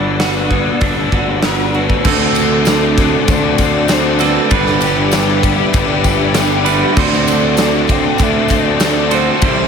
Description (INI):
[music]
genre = rock, shoegaze and dream pop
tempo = 98 BPM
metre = 4/4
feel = straight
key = D mixolydian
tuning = A4 = 440 Hz
[part]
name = pure breathy sine lead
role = melody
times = 0.0-9.7 s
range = A4 to G5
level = -23 LUFS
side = left 2 dB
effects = chorus, diffuse ambient delay
[part]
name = warm analog pad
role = sustained chords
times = 0.0-9.7 s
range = C4 to E6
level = -23 LUFS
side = equal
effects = chorus
[part]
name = picked twelve-string acoustic guitar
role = arpeggios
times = 0.0-9.7 s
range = E3 to G4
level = -25 LUFS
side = right 6 dB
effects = none
[part]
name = biting overdriven guitar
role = riff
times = 0.0-9.7 s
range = G2 to B4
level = -18 LUFS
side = left 8 dB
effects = ensemble chorus
[part]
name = biting overdriven guitar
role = riff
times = 0.0-9.7 s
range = C3 to C5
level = -19 LUFS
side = right 9 dB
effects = reverse reverb
[part]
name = fuzz fingered electric bass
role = bass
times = 0.0-9.7 s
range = G1 to D2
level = -19 LUFS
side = equal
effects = overdrive
[part]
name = big rock drum kit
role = drums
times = 0.2-9.6 s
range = crash cymbal, hi-hat, kick drum, ride cymbal, snare drum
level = -17 LUFS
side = equal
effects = none
[part]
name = tambourine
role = percussion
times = 2.1-9.3 s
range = none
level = -30 LUFS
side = right 12 dB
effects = none
[sound]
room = moderate lush hall reverb, RT60 1.7 s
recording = dreamy mix soaked in reverb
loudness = -11 LUFS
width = side -6 dB against mid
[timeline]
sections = 0.0-2.1 A section; 2.1-9.7 B section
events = none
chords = 0.0 Gmaj7; 2.1 D5; 4.5 G6; 7.0 D5